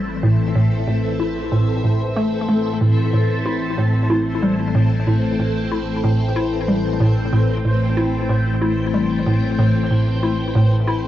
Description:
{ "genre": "ambient, sequencer-driven space music", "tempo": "93 BPM", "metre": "4/4", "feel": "straight", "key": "A minor", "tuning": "A4 = 440 Hz", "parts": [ { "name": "phased string machine", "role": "sustained chords", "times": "0.0-11.1 s", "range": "A2 to G5", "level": "-21 LUFS", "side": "left 1 dB", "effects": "ensemble chorus, phaser, cassette tape" }, { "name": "clean electric guitar", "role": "arpeggios", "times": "0.0-10.8 s", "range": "A3 to A5", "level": "-34 LUFS", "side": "left 4 dB", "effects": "none" }, { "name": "hollow square pluck", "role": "riff", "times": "0.0-11.1 s", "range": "A2 to E4", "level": "-18 LUFS", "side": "equal", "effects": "chorus, cassette tape, ping-pong delay" }, { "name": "warm sub bass", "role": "bass", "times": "0.0-11.1 s", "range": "A1", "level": "-33 LUFS", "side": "equal", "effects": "none" }, { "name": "bubbling stepped-filter texture", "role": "texture", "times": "0.1-11.1 s", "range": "C5", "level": "-35 LUFS", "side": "equal", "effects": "chorus, built-in reverb, cassette tape" } ], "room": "wet booth ambience, RT60 0.3 s", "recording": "home recording on cassette, nothing above 7.8 kHz", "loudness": "-16 LUFS", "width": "side -12 dB against mid", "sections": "0.0-11.1 A section", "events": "fade-in on synth texture 0.0-11.1", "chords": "0.0 Am" }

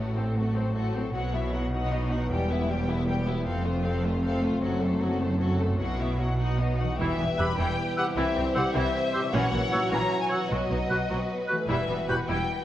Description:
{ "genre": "cinematic", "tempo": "102 BPM (dotted quarters)", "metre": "6/8", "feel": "straight", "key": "E harmonic minor from 7.0 s", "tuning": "A4 = 440 Hz", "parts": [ { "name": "warm symphonic violin section", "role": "melody", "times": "0.0-12.6 s", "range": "A4 to B5", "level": "-33 LUFS", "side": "left 3 dB", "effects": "none" }, { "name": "rich symphonic violin section", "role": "second line", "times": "0.0-12.6 s", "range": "D#4 to C#5", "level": "-35 LUFS", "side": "left 2 dB", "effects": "none" }, { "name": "clear symphonic viola section", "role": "accompaniment", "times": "0.0-12.5 s", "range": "E3 to F#4", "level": "-33 LUFS", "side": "equal", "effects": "none" }, { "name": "concert harp", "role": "arpeggios", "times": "0.0-12.6 s", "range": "E2 to C5", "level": "-37 LUFS", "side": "left 4 dB", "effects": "none" }, { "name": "clear symphonic double bass section", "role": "bass", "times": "0.0-12.4 s", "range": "E1 to C2", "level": "-31 LUFS", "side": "right 1 dB", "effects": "none" }, { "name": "rich symphonic cello section", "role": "bass", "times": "0.0-12.4 s", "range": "E2 to C3", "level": "-31 LUFS", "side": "right 1 dB", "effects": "none" }, { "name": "mellow French horn section", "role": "sustained chords", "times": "0.4-12.2 s", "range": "F#3 to F#4", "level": "-34 LUFS", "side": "left 2 dB", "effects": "none" }, { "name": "bright trombone section", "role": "sustained chords", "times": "7.0-12.2 s", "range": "E3 to G3", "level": "-35 LUFS", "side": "right 3 dB", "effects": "none" }, { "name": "mellow concert flute", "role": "second line", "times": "7.4-12.2 s", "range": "E6 to G6", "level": "-36 LUFS", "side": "equal", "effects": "none" }, { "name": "warm clarinet", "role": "second line", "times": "7.4-12.2 s", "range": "F#4 to G4", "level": "-37 LUFS", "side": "equal", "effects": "none" }, { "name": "warm oboe", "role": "second line", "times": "7.4-12.2 s", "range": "B4 to C#5", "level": "-34 LUFS", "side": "right 1 dB", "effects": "none" } ], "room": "moderate recital hall reverb, RT60 1.4 s", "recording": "worn, warbling old tape, cassette tape, warbly pitch drift", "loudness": "-24 LUFS", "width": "side -13 dB against mid", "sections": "0.0-7.0 A section; 7.0-12.6 B section", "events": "build-up 0.0-7.0", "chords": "0.0 F#dim/A; 1.1 Bsus4; 1.7 B; 2.3 Em; 3.5 F; 4.6 F#dim; 5.8 Bsus4; 6.4 B; 7.0 Em; 8.2 C; 9.3 F#7/A#; 10.5 B; 11.7 Emadd9" }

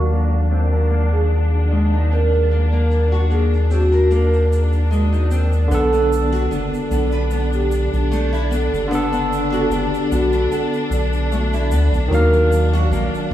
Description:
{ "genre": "trip hop", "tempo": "75 BPM", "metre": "4/4", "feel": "swing 54% on 16ths", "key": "unclear", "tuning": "A4 = 440 Hz", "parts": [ { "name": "barky tine electric piano", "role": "accompaniment", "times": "0.0-13.3 s", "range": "D3 to E#5", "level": "-24 LUFS", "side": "right 1 dB", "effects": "overdrive, harmonic tremolo, tape echo" }, { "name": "rich studio string section", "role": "sustained chords", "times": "0.0-13.3 s", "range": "D4", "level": "-27 LUFS", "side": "left 1 dB", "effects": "none" }, { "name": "nylon-string guitar", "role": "arpeggios", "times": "0.0-13.3 s", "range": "G#3 to B4", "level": "-27 LUFS", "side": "left 2 dB", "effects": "lush chorus, tape echo" }, { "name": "round analog bass", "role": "bass", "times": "0.0-13.3 s", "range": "F#1 to D#2", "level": "-17 LUFS", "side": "equal", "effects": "none" }, { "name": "flickering grainy texture", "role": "texture", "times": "0.0-5.7 s", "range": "F#3 to F#5", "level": "-37 LUFS", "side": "right 1 dB", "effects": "none" }, { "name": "egg shaker", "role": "percussion", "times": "0.1-13.3 s", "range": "none", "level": "-45 LUFS", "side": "right 5 dB", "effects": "none" }, { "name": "pure breathy sine lead", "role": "melody", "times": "1.1-12.7 s", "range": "F#4 to A#4", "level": "-23 LUFS", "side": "right 1 dB", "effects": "lush chorus, tape echo" } ], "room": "moderate plate reverb, RT60 2.8 s", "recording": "dreamy mix soaked in reverb, vinyl crackle, low-pass filter, studio reverb", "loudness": "-15 LUFS", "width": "side -12 dB against mid", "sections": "0.0-5.7 A section; 5.7-13.3 B section", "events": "filter sweep on string section 0.0-5.7; filter sweep 0.0-5.7", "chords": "0.0 D#madd9; 5.7 Bm7; 12.1 D#madd9" }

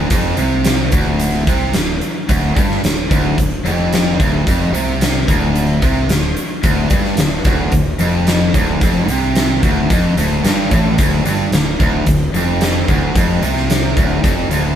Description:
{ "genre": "classic rock", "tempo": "110 BPM", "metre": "4/4", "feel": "straight", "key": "unclear", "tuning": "A4 = 440 Hz", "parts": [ { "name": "cranked stack guitar", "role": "riff", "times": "0.0-14.8 s", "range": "D2 to C3", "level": "-20 LUFS", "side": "left 4 dB", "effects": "overdrive" }, { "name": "distorted electric guitar", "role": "riff", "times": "0.0-14.8 s", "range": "D2 to C3", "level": "-18 LUFS", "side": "right 3 dB", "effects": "overdrive" }, { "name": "fuzz fingered electric bass", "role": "bass", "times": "0.0-14.8 s", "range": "D1 to C2", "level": "-21 LUFS", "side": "equal", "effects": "overdrive" }, { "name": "huge arena drum kit", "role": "drums", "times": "0.1-14.6 s", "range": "hi-hat, kick drum, snare drum", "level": "-17 LUFS", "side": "equal", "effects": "none" } ], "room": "moderate studio reverb, RT60 0.6 s", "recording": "band playing live in one room", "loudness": "-13 LUFS", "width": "side -10 dB against mid", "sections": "0.0-14.8 A section", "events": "none", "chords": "0.0 D5" }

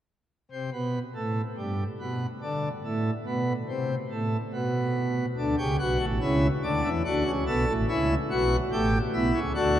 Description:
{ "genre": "classical, baroque-style 3-part fugue for pipe organ", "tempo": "72 BPM", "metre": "3/4", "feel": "straight", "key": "unclear", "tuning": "A4 = 442 Hz", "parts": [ { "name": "pipe organ, plenum", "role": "solo", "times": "0.5-9.8 s", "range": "A1 to A4", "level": "-25 LUFS", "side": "equal", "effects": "none" } ], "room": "wet cathedral reverb, RT60 7.0 s", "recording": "in a vast, echoing space", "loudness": "-25 LUFS", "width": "side -11 dB against mid", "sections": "0.3-9.8 A section", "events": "none", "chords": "0.3 N.C.; 5.4 D; 7.9 C#dim" }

